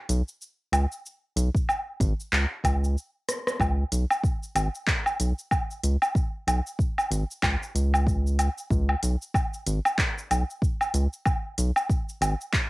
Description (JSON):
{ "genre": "organic downtempo", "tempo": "94 BPM", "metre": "4/4", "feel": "swing 57% on 16ths", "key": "unclear", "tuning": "A4 = 443 Hz", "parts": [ { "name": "round analog bass", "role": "bass", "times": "0.1-12.3 s", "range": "G#1 to C#2", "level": "-24 LUFS", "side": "equal", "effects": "none" }, { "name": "organic electronic drum kit", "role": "drums", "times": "0.1-12.7 s", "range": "cabasa, handclaps, hi-hat, rim click, woodblock", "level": "-27 LUFS", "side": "equal", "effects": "none" }, { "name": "electronic kick drum", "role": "drums", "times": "1.5-12.7 s", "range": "none", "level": "-26 LUFS", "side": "equal", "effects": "none" } ], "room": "moderate studio reverb, RT60 0.6 s", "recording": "home recording on cassette", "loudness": "-24 LUFS", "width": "side -21 dB against mid", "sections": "0.0-3.6 A section; 3.6-12.7 A section", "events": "break 3.0-3.6; drum fill 3.3-3.6", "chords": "none", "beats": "0.41 | 1.05 1.69 2.33 2.96 | 3.60 4.24 4.88 5.52 | 6.15 6.79 7.43 8.07 | 8.71 9.35 9.98 10.62 | 11.26 11.90 12.54" }